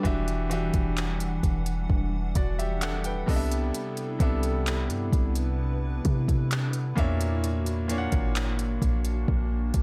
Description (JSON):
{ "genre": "contemporary R&B", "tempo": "65 BPM", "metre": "4/4", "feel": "straight", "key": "E minor", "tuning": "A4 = 440 Hz", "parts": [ { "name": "clear grand piano", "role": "accompaniment", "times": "0.0-9.8 s", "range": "A#2 to G5", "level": "-34 LUFS", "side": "equal", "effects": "none" }, { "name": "hollow soft pad", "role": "sustained chords", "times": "0.0-9.8 s", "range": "C3 to F#5", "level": "-38 LUFS", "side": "equal", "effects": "ensemble chorus" }, { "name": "warm 808-style bass", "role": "bass", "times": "0.0-9.8 s", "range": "E1 to C3", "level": "-30 LUFS", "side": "equal", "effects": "none" }, { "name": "smooth R&B drum kit", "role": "drums", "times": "0.0-9.8 s", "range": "handclaps, hi-hat, kick drum", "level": "-30 LUFS", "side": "equal", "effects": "none" } ], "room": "little or no reverb", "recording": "none", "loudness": "-27 LUFS", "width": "mono", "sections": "0.0-9.8 A section", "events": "none", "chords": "0.0 Em9; 3.3 Cmaj13; 7.0 F#7b13" }